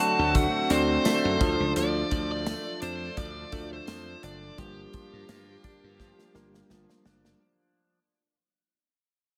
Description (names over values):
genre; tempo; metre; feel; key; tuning
1980s-style pop; 85 BPM; 4/4; swing 55% on 16ths; G minor; A4 = 444 Hz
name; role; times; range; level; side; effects
dark smooth lead guitar; melody; 0.0-6.7 s; G4 to A5; -33 LUFS; equal; overdrive, tape echo
tine electric piano; accompaniment; 0.0-7.4 s; G3 to D5; -34 LUFS; equal; none
lush unison pad; sustained chords; 0.0-7.4 s; D3 to F#4; -40 LUFS; equal; none
direct-recorded clean electric guitar; riff; 0.0-8.0 s; F3 to F#4; -38 LUFS; equal; analog chorus, tape echo
modern studio drum kit; drums; 0.0-7.4 s; hi-hat, kick drum, snare drum, tambourine; -32 LUFS; equal; gated reverb
glassy slap bass; bass; 0.2-7.3 s; F#1 to G2; -34 LUFS; equal; none
room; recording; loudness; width
light reverb, studio ambience; none; -27 LUFS; mono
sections
0.0-7.4 A section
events
fade-out 0.0-7.4; drum fill 6.0-7.4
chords
0.0 D7; 1.4 Dm; 4.6 Gm7